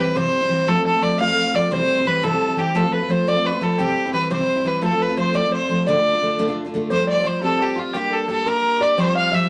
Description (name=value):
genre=celtic folk, Celtic jig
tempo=116 BPM (dotted quarters)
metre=6/8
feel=straight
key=unclear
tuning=A4 = 443 Hz
part: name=clear fiddle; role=melody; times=0.0-9.5 s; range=F4 to F5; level=-23 LUFS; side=equal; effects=none
part: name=mellow tin whistle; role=second line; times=0.0-9.5 s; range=F5 to F6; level=-32 LUFS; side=equal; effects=none
part: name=open-back banjo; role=second line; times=0.0-9.5 s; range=F4 to F5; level=-29 LUFS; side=equal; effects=none
part: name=picked steel-string acoustic guitar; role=accompaniment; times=0.0-9.5 s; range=D2 to G4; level=-24 LUFS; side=equal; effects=none
room=wet club reverb, RT60 0.6 s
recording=none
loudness=-20 LUFS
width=mono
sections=0.0-6.9 A section; 6.9-9.5 B section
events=none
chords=0.0 C; 0.7 F; 1.7 C; 2.8 F; 3.8 C; 4.8 F; 5.9 Dm; 6.9 Fsus2; 7.9 Gm; 9.0 Fsus2